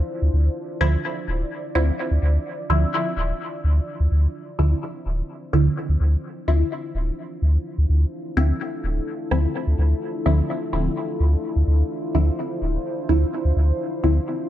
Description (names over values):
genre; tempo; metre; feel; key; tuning
dub techno; 127 BPM; 4/4; straight; D minor; A4 = 440 Hz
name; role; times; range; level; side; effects
deep dark ambient pad; sustained chords; 0.0-14.5 s; D4 to D5; -30 LUFS; left 1 dB; chorus, built-in reverb
pure sine sub bass; bass; 0.2-14.2 s; D1 to D2; -18 LUFS; equal; tube saturation
filtered dub chord stab; stabs; 0.8-14.2 s; D3 to E4; -25 LUFS; equal; phaser, dub echo
room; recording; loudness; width
light reverb; dark, warm production; -20 LUFS; side -12 dB against mid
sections
0.0-3.9 A section; 3.9-14.5 A section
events
none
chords
0.0 Dm9